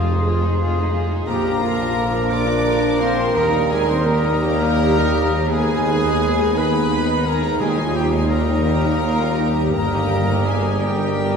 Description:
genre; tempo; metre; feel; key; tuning
classical, slow romantic movement for symphony orchestra; 57 BPM (dotted quarters); 12/8; rubato; Eb major; A4 = 440 Hz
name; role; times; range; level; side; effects
warm studio violin section; melody; 0.0-11.4 s; D4 to Ab4; -29 LUFS; left 4 dB; none
clear clarinet; second line; 0.0-11.4 s; F4 to D5; -31 LUFS; equal; none
mellow concert flute; second line; 0.0-11.4 s; D6 to Eb6; -33 LUFS; left 2 dB; none
warm cor anglais; second line; 0.0-11.4 s; Bb4 to C5; -33 LUFS; right 3 dB; none
warm symphonic violin section; second line; 0.0-11.4 s; F5 to D6; -28 LUFS; left 1 dB; none
dark symphonic viola section; accompaniment; 0.0-11.4 s; D3 to F4; -30 LUFS; equal; none
warm bassoon; accompaniment; 0.0-11.4 s; F3 to Ab3; -30 LUFS; right 1 dB; none
mellow French horn section; sustained chords; 0.0-11.4 s; F3 to D4; -25 LUFS; left 4 dB; none
concert harp; arpeggios; 0.0-11.4 s; F2 to Eb5; -30 LUFS; left 2 dB; none
warm trumpet section; stabs; 0.0-11.4 s; F4 to D5; -28 LUFS; right 1 dB; none
rich symphonic double bass section; bass; 0.0-11.4 s; G1 to F2; -24 LUFS; right 2 dB; none
warm symphonic cello section; bass; 0.0-11.4 s; Eb4 to Bb4; -25 LUFS; right 2 dB; none
warm tuba; bass; 0.0-11.4 s; F1 to Eb2; -23 LUFS; right 1 dB; none
timpani; percussion; 7.6-8.6 s; Eb3; -31 LUFS; equal; none
room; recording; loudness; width
wet concert hall reverb, RT60 2.3 s; heard from further back in the room; -16 LUFS; side -6 dB against mid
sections
0.0-11.4 A section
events
none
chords
0.0 Fm7; 1.3 Bb; 3.4 Eb; 5.5 Abm/Eb; 7.6 Eb; 9.7 Eb/G

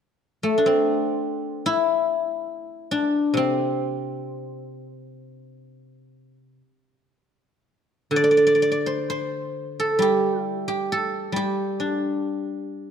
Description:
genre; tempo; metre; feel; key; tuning
chinese traditional, Chinese solo plucked strings; free time; none; none; C gong mode; A4 = 440 Hz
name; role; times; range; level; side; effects
guzheng; solo; 0.4-12.9 s; C3 to D5; -21 LUFS; equal; none
room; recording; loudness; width
light reverb; dark, warm production; -21 LUFS; side -7 dB against mid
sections
0.0-8.1 A section; 8.1-12.9 B section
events
none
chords
none

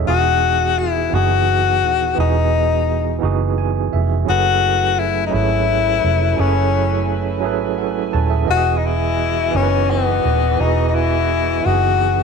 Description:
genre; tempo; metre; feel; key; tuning
R&B; 57 BPM (dotted quarters); 6/8; straight; unclear; A4 = 441 Hz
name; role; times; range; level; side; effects
overdriven tine electric piano; accompaniment; 0.0-12.2 s; E3 to A5; -22 LUFS; right 14 dB; fast tremolo
vintage muted fingered electric bass; bass; 0.0-12.2 s; D#1 to G#1; -19 LUFS; right 2 dB; none
breathy tenor saxophone; melody; 0.1-12.2 s; B3 to F#4; -18 LUFS; left 11 dB; slapback echo
warm studio string section; sustained chords; 4.3-12.2 s; E3 to G#5; -29 LUFS; right 1 dB; none
room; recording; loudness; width
light reverb; 1960s-style stereo with parts hard left and right; -15 LUFS; side -5 dB against mid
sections
0.0-12.2 A section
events
tine electric piano fill 3.2-4.3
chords
0.1 Emaj9; 4.3 F#m11; 8.5 Emaj9

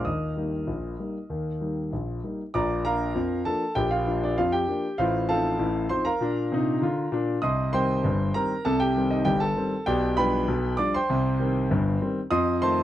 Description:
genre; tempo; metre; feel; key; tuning
ragtime piano; 98 BPM; 2/4; straight; Bb major; A4 = 441 Hz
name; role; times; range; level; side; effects
warm concert grand piano; solo; 0.0-12.8 s; G1 to Eb6; -23 LUFS; equal; none
room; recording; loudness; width
little or no reverb; dry, close 1970s-style studio recording; -23 LUFS; side -12 dB against mid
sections
0.0-2.5 A section; 2.5-12.8 B section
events
none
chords
0.1 Eb; 2.5 Bb; 5.0 F7/A; 6.2 Bb; 7.4 Cm; 9.9 G7/B; 11.1 Cm; 12.3 F7

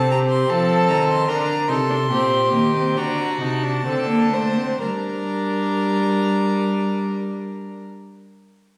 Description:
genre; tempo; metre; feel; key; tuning
classical, baroque-style fugue for string quartet; 61-78 BPM; 4/4; straight; G minor; A4 = 440 Hz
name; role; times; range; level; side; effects
rich violin; melody; 0.0-7.8 s; A5 to C6; -28 LUFS; equal; none
warm violin; second line; 0.0-7.8 s; F#4 to C5; -27 LUFS; equal; none
warm viola; accompaniment; 0.0-7.8 s; A3 to Eb4; -26 LUFS; equal; none
rich cello; bass; 0.0-7.8 s; Bb2 to G3; -26 LUFS; equal; none
room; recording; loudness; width
wet recital hall reverb, RT60 1.5 s; heard from further back in the room; -20 LUFS; mono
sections
0.0-4.8 A section; 4.8-8.7 B section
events
slowing down 0.0-4.8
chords
0.0 Adim/C; 1.3 Gm; 3.0 D7; 4.8 Gm

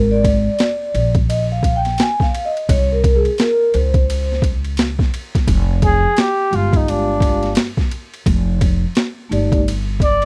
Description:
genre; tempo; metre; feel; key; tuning
hip hop, jazz-hop; 86 BPM; 4/4; swing 63% on 16ths; F dorian; A4 = 440 Hz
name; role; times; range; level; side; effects
vibraphone with soft mallets; accompaniment; 0.0-9.6 s; Ab3 to Ab5; -21 LUFS; equal; none
upright bass; bass; 0.0-10.3 s; F1 to Db2; -21 LUFS; equal; none
boom bap sampler-style drum kit; drums; 0.2-10.3 s; hi-hat, kick drum, ride cymbal, snare drum; -20 LUFS; equal; overdrive
breathy flugelhorn; melody; 5.8-10.3 s; D4 to D5; -19 LUFS; equal; none
room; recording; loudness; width
little or no reverb; dry, close 1970s-style studio recording; -17 LUFS; mono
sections
0.0-5.5 A section; 5.5-10.3 A section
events
vibraphone solo 0.0-5.5; flugelhorn solo 5.5-10.3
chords
0.0 Absus2; 2.7 Bbmadd9/C; 5.5 Fmadd9; 8.3 F13

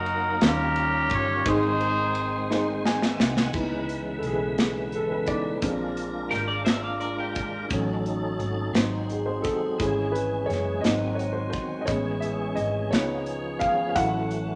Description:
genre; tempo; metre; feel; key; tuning
slow gospel; 58 BPM (dotted quarters); 6/8; straight; C# minor; A4 = 438 Hz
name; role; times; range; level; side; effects
clear horn section; melody; 0.0-2.8 s; C#4 to C#5; -27 LUFS; equal; none
warm upright piano; accompaniment; 0.0-14.6 s; G#2 to G#5; -31 LUFS; equal; none
tonewheel organ; sustained chords; 0.0-14.6 s; C#3 to F#5; -35 LUFS; equal; slow rotary speaker, overdrive, chorus vibrato
hollow-body short-scale fingered electric bass; bass; 0.0-14.6 s; F#1 to D#2; -35 LUFS; equal; none
modern studio drum kit; drums; 0.1-14.5 s; crash cymbal, hi-hat, kick drum, ride cymbal, snare drum; -29 LUFS; equal; none
dark French horn section; sustained chords; 3.6-14.6 s; C#3 to A4; -41 LUFS; equal; none
twelve-string electric guitar; second line; 6.3-7.7 s; G4 to E#5; -32 LUFS; equal; phaser
room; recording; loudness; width
moderate large studio reverb, RT60 1.2 s; nothing above 10.7 kHz; -26 LUFS; mono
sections
0.0-3.5 A section; 3.5-14.6 B section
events
drum fill 2.5-3.5; upright piano fill 2.5-3.5; tonewheel organ fill 2.5-3.5; upright piano solo 3.5-14.6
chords
0.4 D#13; 1.5 G#; 3.5 C#m7; 5.6 A#7; 7.7 D#m7b5/A; 8.7 G#7; 9.8 C#m/G#; 10.8 G#7; 11.9 Amaj7; 12.9 C#7; 14.0 F#m7

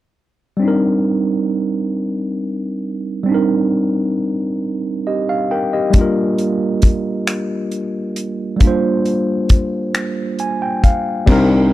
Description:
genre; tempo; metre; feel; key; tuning
slow six-eight R&B; 45 BPM (dotted quarters); 6/8; straight; C minor; A4 = 440 Hz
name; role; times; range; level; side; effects
overdriven tine electric piano; accompaniment; 0.6-11.7 s; G3 to Ab5; -16 LUFS; moving between left 3 dB and right 4 dB; auto-pan
warm soul drum kit; drums; 5.9-11.5 s; crash cymbal, finger snaps, hi-hat, kick drum; -14 LUFS; equal; none
dark baby grand piano; bass; 11.3-11.7 s; C2; -16 LUFS; equal; none
room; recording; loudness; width
studio ambience; dry, close 1970s-style studio recording; -15 LUFS; side -15 dB against mid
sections
0.6-11.3 A section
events
tine electric piano fill 9.9-11.3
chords
0.6 Cm9; 5.9 Gm7

